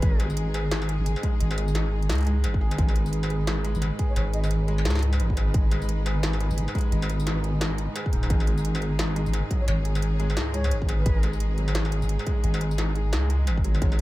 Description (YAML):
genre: half-time drum and bass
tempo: 174 BPM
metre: 4/4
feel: swing 59% on 16ths, half-time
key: G# minor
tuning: A4 = 440 Hz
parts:
  - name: mellow silver concert flute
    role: melody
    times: 0.0-0.3, 4.1-4.5, 9.6-11.3 s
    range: B4 to D#5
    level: -39 LUFS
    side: left 1 dB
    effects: vintage 12-bit sampler grit, tape echo
  - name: rich studio string section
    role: sustained chords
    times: 0.0-14.0 s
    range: G#2 to C#5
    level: -36 LUFS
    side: equal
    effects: sidechain pumping
  - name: felt-muted upright piano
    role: arpeggios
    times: 0.0-14.0 s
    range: G#2 to G#4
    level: -34 LUFS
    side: right 2 dB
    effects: tape echo
  - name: deep soft wobble bass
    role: bass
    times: 0.0-14.0 s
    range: D#1 to C#2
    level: -24 LUFS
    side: equal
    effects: chorus
  - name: electronic kick drum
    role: drums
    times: 0.0-13.9 s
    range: none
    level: -24 LUFS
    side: equal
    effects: distortion
  - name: industrial drum kit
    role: drums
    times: 0.0-14.0 s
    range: hi-hat, snare drum, struck metal, tambourine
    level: -32 LUFS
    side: left 1 dB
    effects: dub echo
room: light reverb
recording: echo-heavy mix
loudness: -22 LUFS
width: side -17 dB against mid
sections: 0.0-14.0 A section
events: none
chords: 0.0 G#5